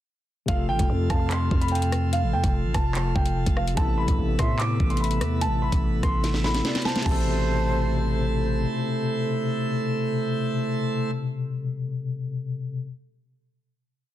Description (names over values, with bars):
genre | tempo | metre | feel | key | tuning
hip hop, drill | 146 BPM | 4/4 | half-time | A minor | A4 = 440 Hz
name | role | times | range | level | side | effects
dark concert grand piano | melody | 0.5-8.3 s | F5 to D6 | -30 LUFS | right 1 dB | ping-pong delay
overdriven tine electric piano | accompaniment | 0.5-12.9 s | B2 to A4 | -29 LUFS | left 5 dB | medium tremolo
pipe organ, plenum | sustained chords | 0.5-11.1 s | F3 to C5 | -30 LUFS | right 5 dB | none
growling 808-style bass | bass | 0.5-8.7 s | F1 to A2 | -25 LUFS | equal | none
drill drum kit | drums | 0.5-7.2 s | crash cymbal, handclaps, hi-hat, kick drum, rim click, snare drum | -26 LUFS | equal | none
mellow silver concert flute | second line | 1.1-1.3, 4.4-8.3 s | C5 to F5 | -36 LUFS | right 4 dB | ping-pong delay
room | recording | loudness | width
light reverb, small room ambience | dense, heavily limited modern master | -22 LUFS | side -12 dB against mid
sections
0.5-7.1 hook; 7.1-10.3 final chord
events
drum fill 6.2-7.1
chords
0.5 F; 3.8 Amadd9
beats
| 0.48 0.90 1.31 1.72 | 2.13 2.54 2.95 3.36 | 3.77 4.18 4.59 5.00 | 5.42 5.83 6.24 6.65 | 7.06 7.47 7.88 8.29 | 8.70 9.11 9.53 9.94